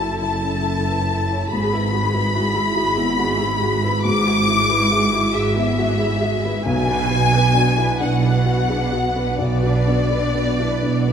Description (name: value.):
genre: cinematic.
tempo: 42-48 BPM (dotted quarters).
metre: 6/8.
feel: rubato.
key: unclear.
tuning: A4 = 440 Hz.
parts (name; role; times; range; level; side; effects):
warm symphonic violin section; melody; 0.0-11.1 s; D5 to D6; -24 LUFS; left 2 dB; none.
rich symphonic violin section; second line; 0.0-11.1 s; D5 to D6; -23 LUFS; left 4 dB; none.
dark baby grand piano; accompaniment; 0.0-11.1 s; B1 to C#5; -24 LUFS; left 2 dB; none.
warm symphonic viola section; accompaniment; 0.0-11.1 s; B3 to B4; -26 LUFS; right 1 dB; none.
dark studio double bass section; bass; 0.0-11.1 s; F#1 to B1; -23 LUFS; right 3 dB; none.
warm symphonic cello section; bass; 0.0-11.1 s; F#2 to B2; -24 LUFS; right 3 dB; none.
room: wet concert hall reverb, RT60 2.2 s.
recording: minimal, uncompressed stereo recording.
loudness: -16 LUFS.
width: side -8 dB against mid.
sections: 0.0-11.1 A section.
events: none.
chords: 0.0 F#m7; 1.5 Eadd9/G#; 6.7 Bm.